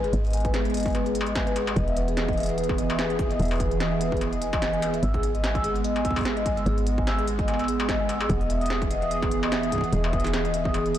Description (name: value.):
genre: IDM.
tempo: 147 BPM.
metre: 4/4.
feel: swing 56% on 16ths.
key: unclear.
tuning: A4 = 440 Hz.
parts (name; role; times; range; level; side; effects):
hollow soft pad; sustained chords; 0.0-11.0 s; E3 to G#4; -29 LUFS; right 2 dB; chorus.
vibraphone with soft mallets; arpeggios; 0.0-11.0 s; G#4 to E6; -28 LUFS; left 2 dB; tape echo, shimmer reverb.
woody FM bass; bass; 0.0-11.0 s; E1 to G#1; -29 LUFS; equal; tube saturation.
industrial drum kit; drums; 0.0-11.0 s; hi-hat, snare drum, struck metal; -32 LUFS; left 1 dB; tape echo.
electronic kick drum; drums; 0.4-10.7 s; none; -30 LUFS; equal; none.
room: light reverb.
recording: blown-out, overdriven recording, overdrive.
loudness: -22 LUFS.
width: side -11 dB against mid.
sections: 0.0-11.0 A section.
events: none.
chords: 0.0 G#m; 1.8 Emaj7; 5.0 G#m; 8.3 Emaj7.